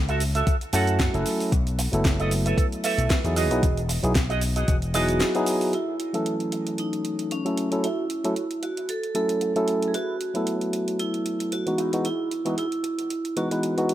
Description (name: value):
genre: nu-disco, nu disco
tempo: 114 BPM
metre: 4/4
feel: swing 55% on 16ths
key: F# dorian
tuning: A4 = 441 Hz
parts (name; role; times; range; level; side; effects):
- vintage slap bass; bass; 0.0-5.2 s; E1 to F#2; -25 LUFS; left 1 dB; none
- electric guitar with an envelope filter; riff; 0.1-13.9 s; D#4 to F#5; -30 LUFS; right 4 dB; lush chorus, low-pass filter, dub echo
- house drum kit; drums; 0.1-13.9 s; cabasa, hi-hat, snare drum; -31 LUFS; right 1 dB; studio reverb
- electronic kick drum; drums; 0.5-4.8 s; none; -23 LUFS; left 1 dB; studio reverb
- tine electric piano; accompaniment; 0.7-13.9 s; E3 to B4; -27 LUFS; equal; sidechain pumping, dub echo
- vibraphone with hard mallets; melody; 5.0-13.9 s; C#4 to A4; -28 LUFS; right 1 dB; digital delay
room: light reverb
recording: none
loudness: -22 LUFS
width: side -13 dB against mid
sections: 0.0-5.7 A section; 5.7-13.9 B section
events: none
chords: 0.0 F#m7; 1.5 B7sus4; 3.4 Emaj9; 5.7 F#m7; 9.9 B7sus4; 11.8 Emaj9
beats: 0.47 1.00 | 1.53 2.05 2.58 3.10 | 3.63 4.16 4.68 5.21 | 5.74 6.26 6.79 7.32 | 7.84 8.37 8.89 9.42 | 9.95 10.47 11.00 11.53 | 12.05 12.58 13.11 13.63